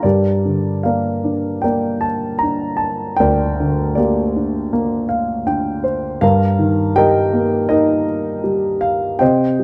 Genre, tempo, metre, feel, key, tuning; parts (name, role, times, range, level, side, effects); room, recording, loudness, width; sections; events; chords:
classical, lyrical solo piano; 74-82 BPM; 4/4; rubato; G minor; A4 = 440 Hz
dark grand piano; solo; 0.0-9.6 s; D2 to Bb5; -17 LUFS; equal
light reverb; close, detailed microphones; -18 LUFS; mono
0.0-9.6 A section
grand piano fill 4.7-6.2
0.0 Gm; 6.2 Ebadd9/G